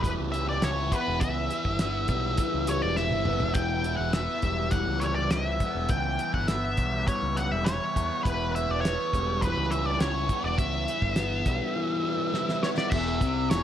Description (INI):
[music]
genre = psychedelic rock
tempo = 102 BPM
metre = 4/4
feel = straight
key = E dorian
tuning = A4 = 440 Hz
[part]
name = octave-fuzz lead guitar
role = melody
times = 0.0-13.6 s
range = B4 to G5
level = -30 LUFS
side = equal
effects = wah, distortion, slapback echo
[part]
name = fuzz guitar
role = riff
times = 0.0-13.6 s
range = E2 to E4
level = -30 LUFS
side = left 1 dB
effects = distortion, phaser
[part]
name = growling picked electric bass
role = bass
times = 0.0-13.6 s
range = E1 to E2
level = -31 LUFS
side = equal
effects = overdrive
[part]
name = cloth-damped thuddy drum kit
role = drums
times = 0.0-13.6 s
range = crash cymbal, hi-hat, kick drum, snare drum, toms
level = -29 LUFS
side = equal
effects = none
[sound]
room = light reverb, small room reverb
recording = none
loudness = -25 LUFS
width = side -10 dB against mid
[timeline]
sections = 0.0-12.9 A section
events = drum fill 3.0-3.6, 12.3-12.9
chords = 0.0 Em; 12.9 N.C.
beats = 0.04 0.63 | 1.22 1.80 2.39 2.98 | 3.56 4.15 4.74 5.33 | 5.91 6.50 7.08 7.67 | 8.26 8.84 9.43 10.01 | 10.60 11.18 11.76 12.35 | 12.93 13.51